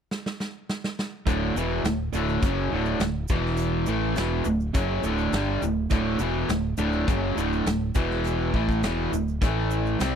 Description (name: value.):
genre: classic rock.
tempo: 103 BPM.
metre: 4/4.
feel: straight.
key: D major.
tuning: A4 = 438 Hz.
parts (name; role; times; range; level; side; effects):
big rock drum kit; drums; 0.1-10.1 s; hi-hat, kick drum, snare drum; -27 LUFS; equal; none.
crunchy overdriven guitar; riff; 1.3-10.2 s; D2 to C4; -28 LUFS; left 12 dB; none.
overdriven electric guitar; riff; 1.3-10.2 s; D2 to C4; -28 LUFS; right 11 dB; none.
fingered electric bass; bass; 1.3-10.2 s; D1 to C2; -29 LUFS; left 1 dB; none.
tube shaker; percussion; 1.3-10.1 s; none; -45 LUFS; right 15 dB; none.
room: small room ambience.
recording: dry, close 1970s-style studio recording.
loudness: -23 LUFS.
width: side -8 dB against mid.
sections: 0.0-1.3 A section; 1.3-10.2 B section.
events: drum fill 0.1-1.3.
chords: 0.0 N.C.; 1.3 D; 3.3 E5; 3.9 D; 8.0 E5; 8.5 D5; 9.4 A5.